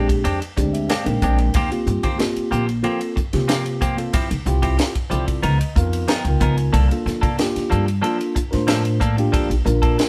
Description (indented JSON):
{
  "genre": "electric jazz fusion",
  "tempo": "92 BPM",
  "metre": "4/4",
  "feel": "straight",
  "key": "unclear",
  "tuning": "A4 = 442 Hz",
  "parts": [
    { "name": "mellow tine electric piano", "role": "accompaniment", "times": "0.0-10.1 s", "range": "Ab3 to Ab5", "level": "-26 LUFS", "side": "equal", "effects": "phaser" },
    { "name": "clean electric guitar", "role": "stabs", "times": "0.0-10.0 s", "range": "F3 to Bb4", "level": "-28 LUFS", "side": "equal", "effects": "none" },
    { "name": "upright bass", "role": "bass", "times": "0.0-9.9 s", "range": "Bb1 to Eb3", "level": "-23 LUFS", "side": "equal", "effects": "none" },
    { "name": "tight funk drum kit", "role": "drums", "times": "0.1-10.1 s", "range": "hi-hat, kick drum, ride cymbal, snare drum", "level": "-26 LUFS", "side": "equal", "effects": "none" }
  ],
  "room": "light reverb",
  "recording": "band playing live in one room",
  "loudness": "-20 LUFS",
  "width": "mono",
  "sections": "0.0-10.1 A section",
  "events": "tine electric piano fill 0.2-1.5, 4.8-6.7",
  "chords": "0.0 Bb13; 1.5 Eb69; 4.1 Dm11; 5.4 Db13; 6.7 C13sus4"
}